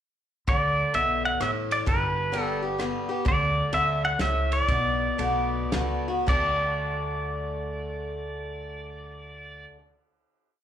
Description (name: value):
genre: honky-tonk and classic country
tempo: 104-130 BPM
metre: 3/4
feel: swing 66% on 8ths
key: D major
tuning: A4 = 435 Hz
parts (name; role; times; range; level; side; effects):
- pedal steel guitar; melody; 0.5-9.7 s; B4 to F#5; -27 LUFS; equal; slapback echo
- picked swing-style acoustic guitar; accompaniment; 0.5-9.8 s; G2 to G4; -31 LUFS; left 2 dB; slapback echo
- upright bass; bass; 0.5-9.6 s; G1 to D2; -32 LUFS; right 1 dB; none
- damped 70s drum kit; drums; 0.5-6.5 s; crash cymbal, kick drum, ride cymbal, rim click, snare drum; -32 LUFS; equal; none
room: light reverb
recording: live gig heard through the venue's PA, club reverb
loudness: -24 LUFS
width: side -10 dB against mid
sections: 0.5-6.3 interlude; 6.3-9.8 final chord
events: slowing down 3.3-6.3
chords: 0.5 D5; 1.9 G; 3.3 D5; 4.7 Bm7; 6.3 D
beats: | 0.48 0.94 1.41 | 1.87 2.33 2.80 | 3.26 3.73 4.20 | 4.69 5.19 5.72 | 6.28 6.86 7.44 | 8.02 8.60 9.18